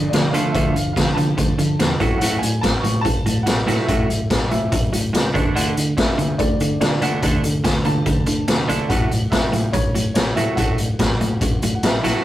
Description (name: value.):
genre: indie rock.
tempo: 144 BPM.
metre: 4/4.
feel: straight.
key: A major.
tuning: A4 = 440 Hz.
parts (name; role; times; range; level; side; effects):
warm upright piano; melody; 0.0-12.2 s; C#5 to C#6; -28 LUFS; equal; none.
twelve-string electric guitar; riff; 0.0-12.2 s; A2 to D4; -22 LUFS; right 2 dB; none.
fingered electric bass; bass; 0.0-12.1 s; A1 to D3; -24 LUFS; left 1 dB; none.
raw garage drum kit; drums; 0.1-12.1 s; hi-hat, kick drum, snare drum; -20 LUFS; left 1 dB; none.
room: moderate booth ambience, RT60 0.2 s.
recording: rough rehearsal-room recording, tube saturation.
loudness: -16 LUFS.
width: side -13 dB against mid.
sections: 0.0-12.2 A section.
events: none.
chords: 0.0 Dm; 2.0 A5; 5.4 D5; 8.9 A5.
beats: 0.12 | 0.54 0.96 1.38 1.80 | 2.21 2.63 3.05 3.47 | 3.89 4.31 4.73 5.14 | 5.56 5.98 6.40 6.82 | 7.23 7.65 8.07 8.49 | 8.91 9.32 9.74 10.16 | 10.58 10.99 11.41 11.83.